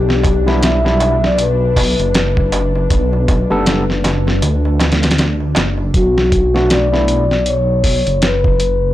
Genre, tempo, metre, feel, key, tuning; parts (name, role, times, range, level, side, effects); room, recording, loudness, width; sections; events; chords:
trip hop; 79 BPM; 4/4; swing 60% on 16ths; B minor; A4 = 439 Hz
vibraphone with soft mallets; melody; 0.0-8.9 s; F#4 to E5; -18 LUFS; left 3 dB; vintage 12-bit sampler grit, dub echo
dark detuned saw bass; bass; 0.0-8.9 s; F#1 to D2; -16 LUFS; equal
bowed-like drone; texture; 0.0-6.0 s; D4; -28 LUFS; equal; built-in reverb
dusty soul sampler-style drum kit; drums; 0.1-8.8 s; hi-hat, kick drum, snare drum; -16 LUFS; equal
darbuka; percussion; 0.1-5.9 s; -27 LUFS; right 3 dB
overdriven tine electric piano; accompaniment; 0.5-7.2 s; G3 to A4; -20 LUFS; right 1 dB; harmonic tremolo, tape echo
digital ambience; blown-out, overdriven recording, overdrive; -12 LUFS; side -14 dB against mid
0.0-5.9 A section; 5.9-8.9 A section
kick drops out 4.4-5.9
0.0 G; 5.9 Bm7